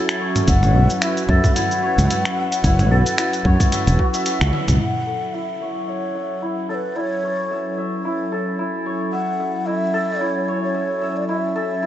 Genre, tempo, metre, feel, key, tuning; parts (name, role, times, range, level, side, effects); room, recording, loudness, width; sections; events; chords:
organic downtempo; 111 BPM; 4/4; swing 56% on 16ths; F# minor; A4 = 440 Hz
warm analog pad; sustained chords; 0.0-11.9 s; F#3 to G#5; -27 LUFS; right 2 dB; chorus, sidechain pumping
santur; arpeggios; 0.0-11.9 s; E4 to E5; -25 LUFS; left 1 dB; low-pass filter, tape echo
dusty soul sampler-style drum kit; drums; 0.1-4.8 s; cabasa, finger snaps, hi-hat, toms; -23 LUFS; equal
breathy low ney; melody; 0.5-11.9 s; B4 to F#5; -25 LUFS; left 2 dB; digital delay
fretless electric bass; bass; 0.5-4.8 s; E1 to F#2; -16 LUFS; equal
electronic kick drum; drums; 0.5-4.5 s; -18 LUFS; equal
light reverb, digital ambience; nothing above 7.9 kHz; -18 LUFS; side -12 dB against mid
0.0-4.8 A section; 4.8-11.9 B section
band accent 4.4; drum fill 4.5; filter sweep on santur 4.8-11.9
0.0 F#m7